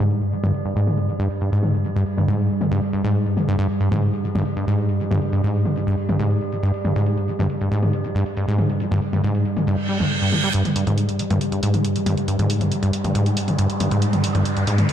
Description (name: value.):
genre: driving peak-time techno.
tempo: 138 BPM.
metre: 4/4.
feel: straight.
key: unclear.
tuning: A4 = 441 Hz.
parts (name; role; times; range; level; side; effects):
acid bass, saw; riff; 0.0-14.9 s; F2 to G3; -21 LUFS; equal; ping-pong delay.
metallic inharmonic drone; drone; 0.0-14.9 s; G2 to G3; -25 LUFS; right 1 dB; chorus, built-in reverb.
techno drum kit; drums; 0.0-14.9 s; hi-hat, toms; -26 LUFS; left 1 dB; low-pass filter on hats, low-pass filter on toms, low-pass filter on snare, low-pass filter on cymbals, low-pass filter on room.
reverse cymbal and riser; sound effects; 9.8-14.9 s; none; -28 LUFS; right 2 dB; none.
room: light reverb.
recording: dark, warm production.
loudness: -18 LUFS.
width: side -10 dB against mid.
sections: 0.0-10.5 A section; 10.5-14.9 B section.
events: reverse cymbal 9.8-10.5; build-up 10.5-14.9; riser 10.5-14.9.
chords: 0.0 Fmadd9 (rootless); 10.5 N.C..